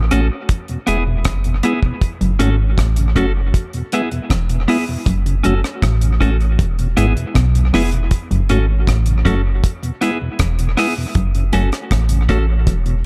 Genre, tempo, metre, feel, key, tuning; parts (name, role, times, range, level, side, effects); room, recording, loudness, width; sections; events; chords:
roots reggae; 79 BPM; 4/4; straight; F# minor; A4 = 441 Hz
warm sub bass; bass; 0.0-13.0 s; E1 to B1; -19 LUFS; equal
clean electric guitar; accompaniment; 0.1-12.4 s; B3 to A4; -25 LUFS; equal; dub echo
mellow tonewheel organ; accompaniment; 0.1-13.0 s; E2 to F#4; -26 LUFS; equal; slow rotary speaker, dub echo
deep reggae drum kit; drums; 0.1-13.0 s; hi-hat, kick drum, rim click; -23 LUFS; equal; dub echo
mellow electric guitar; riff; 2.2-12.9 s; E2 to B2; -24 LUFS; equal
light reverb; echo-heavy mix; -17 LUFS; mono
0.0-2.0 A section; 2.0-13.1 B section
0.5 E; 2.0 F#m; 3.5 E; 5.1 F#m; 6.6 E; 8.1 F#m; 9.6 E; 11.2 F#m